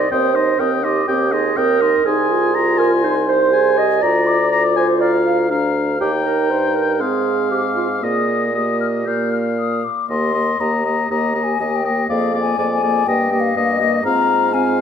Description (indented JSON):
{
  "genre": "quick classical-period movement for wind quintet",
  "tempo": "121 BPM",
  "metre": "4/4",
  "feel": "rubato",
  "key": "Eb major",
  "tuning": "A4 = 440 Hz",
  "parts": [
    { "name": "mellow hollow silver concert flute", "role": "melody", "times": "0.0-14.8 s", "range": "Eb5 to G6", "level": "-22 LUFS", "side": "left 8 dB", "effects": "none" },
    { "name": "clear oboe", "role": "second line", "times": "0.0-14.8 s", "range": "D5 to Bb5", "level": "-22 LUFS", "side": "left 4 dB", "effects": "none" },
    { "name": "dark French horn", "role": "accompaniment", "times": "0.0-14.8 s", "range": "Bb3 to Ab4", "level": "-23 LUFS", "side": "equal", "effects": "none" },
    { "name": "mellow clarinet", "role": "accompaniment", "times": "0.0-14.8 s", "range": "F4 to F5", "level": "-20 LUFS", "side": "right 6 dB", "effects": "none" },
    { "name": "warm bassoon", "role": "bass", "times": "0.0-14.8 s", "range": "C2 to Bb2", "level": "-22 LUFS", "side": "right 1 dB", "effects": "none" }
  ],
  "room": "moderate scoring stage reverb, RT60 1.6 s",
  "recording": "none",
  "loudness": "-15 LUFS",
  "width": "side -8 dB against mid",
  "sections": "0.0-10.1 A section; 10.1-14.8 B section",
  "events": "none",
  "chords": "0.1 Cm/Eb; 2.1 Ab/C; 4.0 Bb/D; 6.0 Eb; 7.0 Fm/Ab; 8.0 Eb/Bb; 9.1 Bb; 10.1 Eb; 12.1 Bb7/F; 13.1 Eb/G; 14.1 Fm/Ab",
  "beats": "| 0.12 0.60 1.08 1.57 | 2.06 2.54 3.04 3.53 | 4.02 4.52 5.01 5.51 | 6.01 6.51 7.01 7.51 | 8.03 8.55 9.07 9.59 | 10.10 10.61 11.11 11.61 | 12.10 12.59 13.08 13.57 | 14.05 14.54"
}